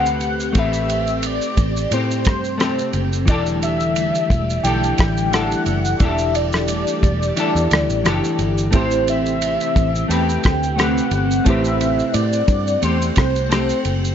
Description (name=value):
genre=indie pop, bedroom pop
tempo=88 BPM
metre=4/4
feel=swing 55% on 16ths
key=unclear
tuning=A4 = 440 Hz
part: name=warm velvety synth lead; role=melody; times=0.0-13.8 s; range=C5 to G5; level=-23 LUFS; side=left 1 dB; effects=wide subtle chorus, analog delay
part: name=semi-hollow electric guitar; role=accompaniment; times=0.0-14.1 s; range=E3 to B4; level=-22 LUFS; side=left 2 dB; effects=ensemble chorus, warbly pitch drift
part: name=phased string machine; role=sustained chords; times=0.0-14.1 s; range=C3 to F#5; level=-27 LUFS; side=equal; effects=ensemble chorus, phaser
part: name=vintage muted fingered electric bass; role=bass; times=0.0-14.1 s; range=E1 to A2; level=-22 LUFS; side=equal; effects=none
part: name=damped 70s drum kit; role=drums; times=0.1-14.1 s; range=kick drum, ride cymbal, rim click, shaker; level=-22 LUFS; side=equal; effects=none
part: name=bright reed electric piano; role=accompaniment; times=8.7-14.1 s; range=C4 to C5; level=-27 LUFS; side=right 7 dB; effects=fast tremolo
room=light reverb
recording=dark, warm production, nothing above 7.6 kHz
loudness=-16 LUFS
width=side -9 dB against mid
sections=0.0-14.1 A section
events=none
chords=0.0 Am9; 3.3 Em11; 8.7 Am9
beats=| 0.55 1.24 1.92 2.60 | 3.28 3.96 4.64 5.32 | 6.01 6.69 7.37 8.05 | 8.73 9.41 10.10 10.78 | 11.46 12.14 12.82 13.50